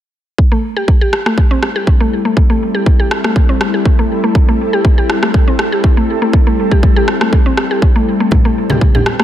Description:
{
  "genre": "afro house",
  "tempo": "121 BPM",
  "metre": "4/4",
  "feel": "swing 54% on 16ths",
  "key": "A minor",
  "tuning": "A4 = 444 Hz",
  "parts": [
    { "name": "ethereal airy pad", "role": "sustained chords", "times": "1.6-9.2 s", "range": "G3 to B4", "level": "-18 LUFS", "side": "left 1 dB", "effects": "ensemble chorus, built-in reverb, sidechain pumping" },
    { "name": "electronic kick drum", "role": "drums", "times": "0.4-8.9 s", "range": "none", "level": "-10 LUFS", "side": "equal", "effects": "none" },
    { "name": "mallet-like synth pluck", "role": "arpeggios", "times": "0.5-9.2 s", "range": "A3 to G4", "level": "-17 LUFS", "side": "equal", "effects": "chorus, sidechain pumping, dub echo" },
    { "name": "electronic rim click", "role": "drums", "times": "1.1-9.2 s", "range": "none", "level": "-18 LUFS", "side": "equal", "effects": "none" },
    { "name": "congas", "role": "percussion", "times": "8.3-9.0 s", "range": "none", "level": "-17 LUFS", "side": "left 1 dB", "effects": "none" }
  ],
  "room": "light reverb",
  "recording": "none",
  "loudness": "-10 LUFS",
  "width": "side -11 dB against mid",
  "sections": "0.4-9.2 A section",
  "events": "none",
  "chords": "0.4 Am7",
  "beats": "| 0.39 0.88 1.38 1.87 | 2.37 2.86 3.36 3.86 | 4.35 4.85 5.34 5.84 | 6.33 6.83 7.33 7.82 | 8.32 8.81"
}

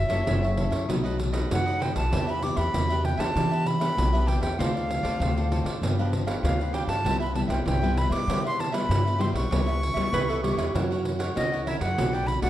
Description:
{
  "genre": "samba and choro",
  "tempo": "97 BPM",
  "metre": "4/4",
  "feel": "straight",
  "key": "unclear",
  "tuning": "A4 = 440 Hz",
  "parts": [
    { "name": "bright silver concert flute", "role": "melody", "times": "0.0-12.5 s", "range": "Eb5 to D6", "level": "-29 LUFS", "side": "equal", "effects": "none" },
    { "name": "nylon-string guitar", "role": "accompaniment", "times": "0.0-12.5 s", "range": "F#2 to A#4", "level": "-32 LUFS", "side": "left 4 dB", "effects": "none" },
    { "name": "upright bass", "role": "bass", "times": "0.0-12.5 s", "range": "F#1 to E3", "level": "-27 LUFS", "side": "equal", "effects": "none" },
    { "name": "cavaquinho", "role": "accompaniment", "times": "0.1-12.5 s", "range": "D4 to F#5", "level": "-36 LUFS", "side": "right 3 dB", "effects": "none" },
    { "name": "pandeiro", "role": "percussion", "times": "0.1-12.5 s", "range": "none", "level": "-29 LUFS", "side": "right 2 dB", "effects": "none" },
    { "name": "breathy tenor saxophone", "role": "second line", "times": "10.1-11.2 s", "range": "F#4 to B4", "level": "-30 LUFS", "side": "right 4 dB", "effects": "none" }
  ],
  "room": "moderate large studio reverb, RT60 1.2 s",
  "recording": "dark, warm production",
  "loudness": "-23 LUFS",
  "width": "side -13 dB against mid",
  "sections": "0.0-12.5 A section",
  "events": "none",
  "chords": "0.0 F#m7; 0.9 B7; 2.1 Em7; 4.6 Dm7; 5.8 G7; 7.1 Cmaj7; 9.5 C#m7b5; 10.7 F#7; 12.0 Bm7",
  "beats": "0.27 0.89 1.51 | 2.12 2.74 3.36 3.97 | 4.59 5.20 5.82 6.44 | 7.05 7.67 8.28 8.90 | 9.51 10.13 10.74 11.36 | 11.97"
}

